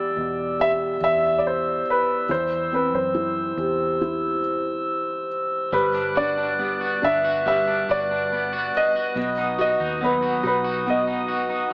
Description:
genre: pop ballad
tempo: 70 BPM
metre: 4/4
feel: straight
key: E minor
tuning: A4 = 440 Hz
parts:
  - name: warm grand piano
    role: melody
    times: 0.0-11.7 s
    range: B4 to E5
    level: -22 LUFS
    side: equal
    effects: none
  - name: felt-muted upright piano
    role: accompaniment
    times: 0.0-11.7 s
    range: B2 to G4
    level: -28 LUFS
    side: equal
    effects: none
  - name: glass harmonica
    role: sustained chords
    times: 0.0-11.7 s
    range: B4 to F#6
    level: -26 LUFS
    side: equal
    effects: none
  - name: vintage muted fingered electric bass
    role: bass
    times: 0.0-11.7 s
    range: G1 to F#2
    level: -37 LUFS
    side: equal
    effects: none
  - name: electric guitar at the edge of break-up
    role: arpeggios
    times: 5.7-11.7 s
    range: B2 to F#4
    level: -28 LUFS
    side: equal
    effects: harmonic tremolo, tape echo
room: moderate lush hall reverb, RT60 2.5 s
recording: small speaker sound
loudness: -20 LUFS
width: side -33 dB against mid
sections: 0.0-11.7 A section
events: none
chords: 0.0 Em7; 2.3 C/E; 5.7 Gmaj7; 9.2 B

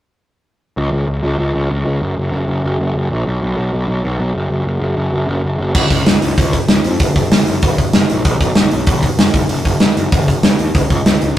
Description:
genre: punk rock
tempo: 192 BPM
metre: 4/4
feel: straight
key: unclear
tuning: A4 = 442 Hz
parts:
  - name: fuzz picked electric bass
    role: bass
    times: 0.8-11.3 s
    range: F1 to F2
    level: -17 LUFS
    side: equal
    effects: overdrive
  - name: big rock drum kit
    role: drums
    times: 5.7-11.3 s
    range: crash cymbal, hi-hat, kick drum, snare drum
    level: -12 LUFS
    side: equal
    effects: none
room: light reverb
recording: rough rehearsal-room recording, tube saturation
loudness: -13 LUFS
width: side -12 dB against mid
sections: 0.8-5.8 A section; 5.8-11.4 B section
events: none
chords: none

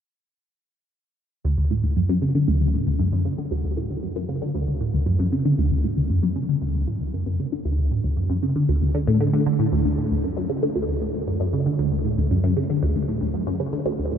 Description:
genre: ambient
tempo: 116 BPM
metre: 4/4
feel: straight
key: D major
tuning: A4 = 442 Hz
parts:
  - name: resonant blip pluck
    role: solo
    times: 1.4-14.2 s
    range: D2 to D3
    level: -20 LUFS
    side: equal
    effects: phaser, analog chorus, tape echo
room: wet huge ambient reverb, RT60 7.6 s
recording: in a vast, echoing space, cassette tape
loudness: -20 LUFS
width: side -8 dB against mid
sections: 1.4-14.2 A section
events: none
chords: none

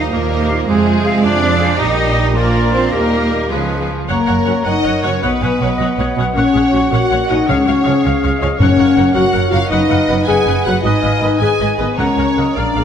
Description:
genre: cinematic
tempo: 106 BPM (dotted quarters)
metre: 6/8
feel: straight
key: Eb major, F# major from 4.1 s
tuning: A4 = 440 Hz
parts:
  - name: warm symphonic violin section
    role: melody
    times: 0.0-12.8 s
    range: F4 to G#5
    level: -23 LUFS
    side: left 4 dB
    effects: none
  - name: rich symphonic violin section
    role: second line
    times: 0.0-12.8 s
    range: Ab4 to Ab5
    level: -27 LUFS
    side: left 3 dB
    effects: none
  - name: rich studio viola section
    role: accompaniment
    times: 0.0-12.8 s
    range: C4 to F#5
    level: -24 LUFS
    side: right 1 dB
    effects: none
  - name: mellow French horn section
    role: sustained chords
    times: 0.0-12.8 s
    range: G3 to G#4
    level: -17 LUFS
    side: left 3 dB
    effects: none
  - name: warm trombone section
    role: sustained chords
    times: 0.0-12.4 s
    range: Ab2 to C#4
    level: -27 LUFS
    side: right 3 dB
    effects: none
  - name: rich symphonic cello section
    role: bass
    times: 0.0-12.8 s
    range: F#2 to Eb4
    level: -20 LUFS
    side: right 3 dB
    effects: none
  - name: rich symphonic double bass section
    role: bass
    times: 0.0-12.8 s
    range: F#1 to F2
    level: -20 LUFS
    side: right 3 dB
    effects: none
  - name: timpani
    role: percussion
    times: 0.0-0.1, 7.5-9.1, 12.0-12.5 s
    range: F#2 to C#3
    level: -22 LUFS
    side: equal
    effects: none
  - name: mellow cor anglais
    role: second line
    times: 0.1-12.8 s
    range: F3 to F#5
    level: -26 LUFS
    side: right 2 dB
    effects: none
  - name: mellow clarinet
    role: second line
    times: 0.5-12.8 s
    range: F4 to D#5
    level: -26 LUFS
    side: left 2 dB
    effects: none
  - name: silver concert flute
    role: second line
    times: 0.5-12.8 s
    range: Cb5 to A#5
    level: -24 LUFS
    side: equal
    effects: none
room: moderate scoring stage reverb, RT60 1.5 s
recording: none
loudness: -12 LUFS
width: side -8 dB against mid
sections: 0.0-4.1 A section; 4.1-12.8 B section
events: none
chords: 0.0 Ebadd9; 0.7 Fm; 1.8 Eb/Bb; 2.4 Bb; 2.9 Eb; 3.5 Db7; 4.1 F#; 5.2 Bsus2; 6.4 F#/A#; 7.5 C#; 8.6 F#; 9.7 B/F#; 10.8 G#m; 12.0 F#/C#

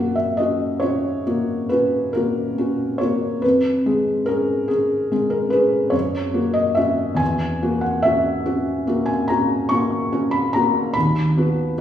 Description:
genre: classical, romantic nocturne for solo piano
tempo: 45-50 BPM (dotted quarters)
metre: 9/8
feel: rubato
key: unclear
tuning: A4 = 440 Hz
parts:
  - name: felt-muted upright piano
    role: solo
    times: 0.0-11.8 s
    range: D#2 to C#6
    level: -18 LUFS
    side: equal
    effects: none
room: wet recital hall reverb, RT60 1.3 s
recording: recorded in a church or concert hall, studio reverb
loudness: -18 LUFS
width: side -10 dB against mid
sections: 0.0-11.8 A section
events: none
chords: 0.0 F#; 3.4 C#/E#; 5.9 F#; 7.2 F#7/E; 10.9 B/D#

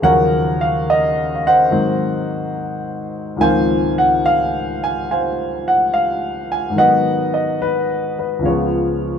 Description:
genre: solo jazz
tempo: 71 BPM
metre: 4/4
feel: swing 68% on 8ths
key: Db major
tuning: A4 = 439 Hz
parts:
  - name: warm grand piano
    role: solo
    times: 0.0-9.2 s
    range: Db2 to Ab5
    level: -15 LUFS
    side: equal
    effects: none
room: moderate stone room reverb, RT60 1.5 s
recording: band playing live in one room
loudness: -15 LUFS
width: side -7 dB against mid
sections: 0.0-9.2 A section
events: none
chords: 0.0 Ebm9; 1.7 Ab7; 3.4 Dbmaj13; 6.8 Abm7; 8.4 Db7

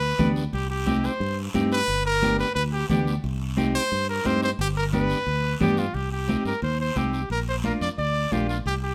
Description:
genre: latin, cumbia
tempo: 177 BPM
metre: 4/4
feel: straight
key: unclear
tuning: A4 = 442 Hz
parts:
  - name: brilliant trumpet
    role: melody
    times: 0.0-8.9 s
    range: F4 to D5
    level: -29 LUFS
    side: equal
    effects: none
  - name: fingered electric bass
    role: bass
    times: 0.0-8.9 s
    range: G1 to G2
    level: -30 LUFS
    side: equal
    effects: none
  - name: clean electric guitar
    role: accompaniment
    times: 0.2-8.6 s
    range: Bb3 to G4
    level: -31 LUFS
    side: equal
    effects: none
  - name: congas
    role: percussion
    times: 0.2-8.8 s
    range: none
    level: -30 LUFS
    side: equal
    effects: none
  - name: guiro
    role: percussion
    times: 0.2-8.9 s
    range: none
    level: -43 LUFS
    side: equal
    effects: none
room: moderate stone room reverb, RT60 1.1 s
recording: band playing live in one room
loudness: -25 LUFS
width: mono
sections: 0.0-5.9 A section; 5.9-8.9 B section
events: none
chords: 0.0 G; 0.5 Cm; 1.9 G; 3.2 Cm; 4.6 G; 5.9 Cm; 7.3 Bb

